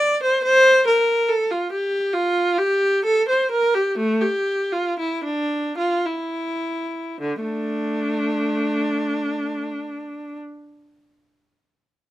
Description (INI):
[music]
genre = classical, baroque-style suite movement for unaccompanied viola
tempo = 50-71 BPM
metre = 3/4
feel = rubato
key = D minor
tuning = A4 = 440 Hz
[part]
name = rich viola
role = solo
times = 0.0-10.4 s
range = D3 to D5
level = -19 LUFS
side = equal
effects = none
[sound]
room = little or no reverb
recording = close, detailed microphones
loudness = -19 LUFS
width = side -14 dB against mid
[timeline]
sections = 0.0-7.2 A section; 7.2-10.6 B section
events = slowing down 0.0-7.2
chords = none